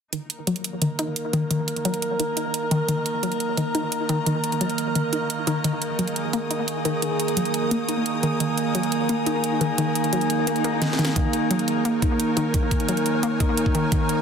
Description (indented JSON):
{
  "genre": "dark technical drum and bass",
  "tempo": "174 BPM",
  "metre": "4/4",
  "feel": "straight",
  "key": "unclear",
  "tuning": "A4 = 440 Hz",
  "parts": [
    { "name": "metallic inharmonic drone", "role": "sustained chords", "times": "0.4-14.2 s", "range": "Eb3 to Bb4", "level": "-24 LUFS", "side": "right 1 dB", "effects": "chorus, built-in reverb, sidechain pumping" },
    { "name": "wide unison pluck", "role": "arpeggios", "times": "0.1-14.0 s", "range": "Eb3 to Eb4", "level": "-26 LUFS", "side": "left 2 dB", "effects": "sidechain pumping, digital delay" },
    { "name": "drum and bass drum kit", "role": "drums", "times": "0.1-14.2 s", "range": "hi-hat, snare drum", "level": "-28 LUFS", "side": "right 3 dB", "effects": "overdrive, small room reverb" },
    { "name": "rich studio string section", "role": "texture", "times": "0.1-14.2 s", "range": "Eb4 to Eb6", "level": "-34 LUFS", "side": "left 2 dB", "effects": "sidechain pumping" },
    { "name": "swell", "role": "sound effects", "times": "10.6-11.2 s", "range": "none", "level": "-32 LUFS", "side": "right 2 dB", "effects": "none" },
    { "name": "electronic kick drum", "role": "drums", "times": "11.2-14.0 s", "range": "none", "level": "-23 LUFS", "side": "equal", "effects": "small room reverb" }
  ],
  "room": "moderate plate reverb, RT60 1.0 s",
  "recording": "dense, heavily limited modern master",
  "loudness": "-21 LUFS",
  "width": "side -7 dB against mid",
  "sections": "0.1-14.2 A section",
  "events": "fade-in on string section 0.1-14.2; filter sweep on synth arpeggio sound 0.1-14.2; swell 10.6-11.2; drum fill 10.8-11.2",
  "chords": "0.1 Eb5"
}